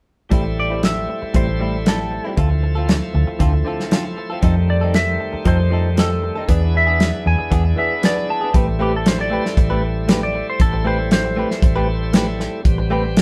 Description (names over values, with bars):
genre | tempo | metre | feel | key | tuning
straight-eighth soul blues | 117 BPM | 4/4 | straight | A minor | A4 = 440 Hz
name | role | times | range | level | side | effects
bright tonewheel organ | accompaniment | 0.3-13.2 s | Eb3 to G4 | -30 LUFS | equal | slow rotary speaker, overdrive
direct-recorded clean electric guitar | stabs | 0.3-13.1 s | A2 to B4 | -27 LUFS | equal | none
vintage muted fingered electric bass | bass | 0.3-13.2 s | A1 to F2 | -22 LUFS | equal | none
warm soul drum kit | drums | 0.3-13.2 s | hi-hat, kick drum, snare drum | -20 LUFS | equal | none
clean lap steel guitar | melody | 0.6-12.6 s | G4 to A5 | -25 LUFS | equal | none
room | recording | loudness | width
moderate studio reverb, RT60 0.7 s | band playing live in one room | -18 LUFS | mono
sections
0.3-8.5 A section; 8.5-13.2 B section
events
none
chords
0.3 Am7; 2.4 Dm7; 4.4 F7; 6.5 E7; 8.5 Am9